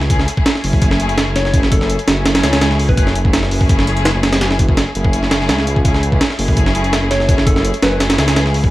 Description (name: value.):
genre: drum and bass, jungle.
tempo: 167 BPM.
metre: 4/4.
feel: straight.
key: F# minor.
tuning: A4 = 441 Hz.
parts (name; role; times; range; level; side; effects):
rich studio string section; sustained chords; 0.0-8.7 s; A3 to G#4; -22 LUFS; left 1 dB; vintage 12-bit sampler grit.
dark detuned saw bass; bass; 0.0-8.7 s; F#1 to C#2; -17 LUFS; equal; none.
breakbeat sampler-style drum kit; drums; 0.0-8.7 s; hi-hat, kick drum, snare drum; -14 LUFS; equal; small room ambience.
soft struck synth lead; melody; 1.4-3.0, 7.1-8.0 s; A4 to C#5; -23 LUFS; left 1 dB; chorus, dub echo.
room: light reverb.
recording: vinyl crackle.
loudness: -12 LUFS.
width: side -16 dB against mid.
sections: 0.0-8.7 A section.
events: none.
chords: 0.0 F#m9.